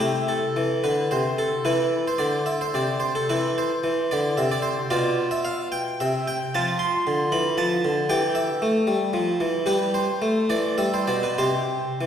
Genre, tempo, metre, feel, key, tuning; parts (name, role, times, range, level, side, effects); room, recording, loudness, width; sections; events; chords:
classical, baroque-style suite movement for harpsichord; 97-117 BPM; 3/4; rubato; A minor, C major from 6.5 s; A4 = 441 Hz
harpsichord; solo; 0.0-12.1 s; B2 to C6; -21 LUFS; equal
wet scoring stage reverb, RT60 1.7 s; heard from further back in the room; -21 LUFS; side -8 dB against mid
0.0-12.1 A section
0.0 Am/C; 1.7 Cmaj9; 2.8 N.C.; 3.3 C/E; 4.9 Bdim; 6.0 N.C.; 6.5 F5; 7.6 Dm; 8.1 Emadd11; 9.1 N.C.; 10.2 Am; 10.8 G; 11.4 C5